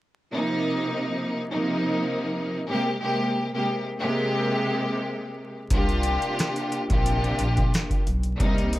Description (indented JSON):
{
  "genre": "hip hop, boom-bap hip-hop",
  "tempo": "89 BPM",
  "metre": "4/4",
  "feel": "swing 54% on 16ths",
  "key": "unclear",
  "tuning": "A4 = 445 Hz",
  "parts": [
    { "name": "warm studio string section", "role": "accompaniment", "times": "0.3-8.8 s", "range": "C3 to G4", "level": "-25 LUFS", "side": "equal", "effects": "high-pass filter, low-pass filter" },
    { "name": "upright bass", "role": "bass", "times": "5.7-8.8 s", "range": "Bb1 to C2", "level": "-26 LUFS", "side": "equal", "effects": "none" },
    { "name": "booming analog drum machine", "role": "drums", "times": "5.7-8.8 s", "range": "hi-hat, kick drum, rim click, snare drum", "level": "-25 LUFS", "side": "equal", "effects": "none" }
  ],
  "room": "light reverb",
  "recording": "vinyl crackle",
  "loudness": "-23 LUFS",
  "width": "side -16 dB against mid",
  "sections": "0.3-8.8 A section",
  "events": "none",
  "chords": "0.3 F7sus4/C; 2.7 Abmaj7/C; 5.7 Bb69"
}